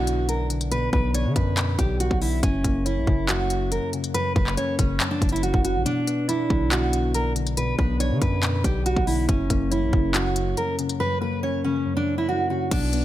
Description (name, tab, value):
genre	hip hop, trap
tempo	140 BPM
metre	4/4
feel	half-time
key	unclear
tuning	A4 = 437 Hz
part	fingerpicked steel-string acoustic guitar	melody	0.0-13.0 s	C#4 to C#5	-26 LUFS	right 2 dB	ping-pong delay
part	soft electric-piano-like synth keys	accompaniment	0.0-13.0 s	F#2 to D4	-28 LUFS	left 2 dB	chorus
part	hard-hitting 808-style bass	bass	0.0-13.0 s	F#1 to D3	-26 LUFS	equal	none
part	trap drum kit	drums	0.1-13.0 s	crash cymbal, handclaps, hi-hat, kick drum	-25 LUFS	equal	none
room	little or no reverb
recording	none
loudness	-21 LUFS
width	side -13 dB against mid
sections	0.0-12.7 A section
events	break 5.9-6.3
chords	0.0 Bm; 2.4 F#; 5.9 Bm; 9.3 F#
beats	0.29 | 0.72 1.14 1.57 2.00 | 2.43 2.86 3.29 3.72 | 4.14 4.57 5.00 5.43 | 5.86 6.29 6.72 7.14 | 7.57 8.00 8.43 8.86 | 9.29 9.72 10.14 10.57 | 11.00 11.43 11.86 12.29 | 12.72